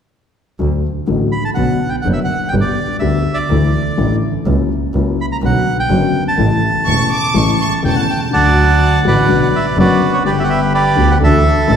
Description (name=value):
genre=tango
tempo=124 BPM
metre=4/4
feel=rubato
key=D major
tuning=A4 = 440 Hz
part: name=dark upright piano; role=accompaniment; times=0.6-11.8 s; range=E1 to G4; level=-16 LUFS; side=left 4 dB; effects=none
part: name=warm double bass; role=bass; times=0.6-11.8 s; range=E1 to D2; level=-17 LUFS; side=right 2 dB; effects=none
part: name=bandoneon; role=melody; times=1.3-11.8 s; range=F#4 to B5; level=-16 LUFS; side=right 2 dB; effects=none
part: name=bright studio violin section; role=second line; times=6.9-8.3 s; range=A5 to D6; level=-20 LUFS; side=right 1 dB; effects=none
room=wet concert hall reverb, RT60 1.8 s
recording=recorded in a church or concert hall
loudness=-12 LUFS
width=side -8 dB against mid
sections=0.6-8.3 A section; 8.3-11.8 B section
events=none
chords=0.6 D; 1.6 Bm; 2.5 G; 3.5 Dsus2; 4.5 F#7/C#; 5.4 Bm; 6.4 A; 8.3 D; 9.3 Bm; 10.3 G; 11.2 Dsus2